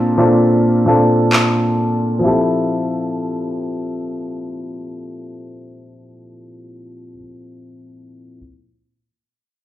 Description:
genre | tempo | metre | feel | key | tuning
contemporary R&B | 66 BPM | 4/4 | straight | F major | A4 = 439 Hz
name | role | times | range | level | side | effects
clear grand piano | accompaniment | 0.0-8.4 s | Bb2 to A4 | -16 LUFS | equal | low-pass filter
electronic handclaps | drums | 1.3-1.5 s | none | -16 LUFS | equal | none
room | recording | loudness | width
light reverb | played on a big sound system in a bare room, stone room reverb | -14 LUFS | side -13 dB against mid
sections
0.0-2.2 A section; 2.2-5.9 B section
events
filter sweep on grand piano 0.0-2.2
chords
0.0 Bbmaj9; 2.2 Fmaj9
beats
0.41 1.32 | 2.23 3.14 4.05 4.96

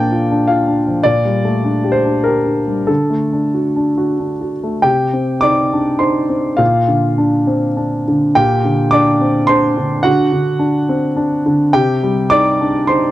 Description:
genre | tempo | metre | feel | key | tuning
neoclassical minimalist piano | 90-108 BPM | 3/4 | rubato | G minor | A4 = 438 Hz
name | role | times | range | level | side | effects
warm concert grand piano | solo | 0.0-13.1 s | Bb2 to D6 | -12 LUFS | equal | none
room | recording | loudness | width
small room ambience | dry, close 1970s-style studio recording | -12 LUFS | side -14 dB against mid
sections
0.0-4.8 A section; 4.8-13.1 B section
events
none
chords
0.0 Bb; 1.0 Gmadd9/Bb; 2.9 D; 4.8 Cm; 6.6 Bb; 8.4 Gm/Bb; 10.1 D; 11.7 Cm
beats
0.47 | 1.05 1.64 2.24 | 2.89 3.56 4.20 | 4.84 5.44 6.03 | 6.60 7.19 7.79 | 8.38 8.94 9.50 | 10.06 10.62 11.18 | 11.75 12.32 12.89

